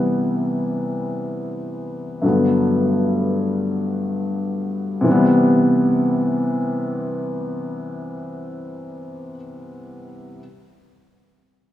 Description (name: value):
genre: hip hop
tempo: free time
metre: none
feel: none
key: unclear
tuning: A4 = 439 Hz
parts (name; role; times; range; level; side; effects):
- dark grand piano; accompaniment; 0.0-10.4 s; G2 to B3; -19 LUFS; left 1 dB; cassette tape, high-pass filter, low-pass filter
room: wet lush hall reverb, RT60 2.5 s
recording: rough home demo mix, small room reverb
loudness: -18 LUFS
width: side -12 dB against mid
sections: 0.0-5.1 A section; 5.1-7.9 B section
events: none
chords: 0.0 Cmaj7; 2.2 Gmaj7; 5.1 Cmaj7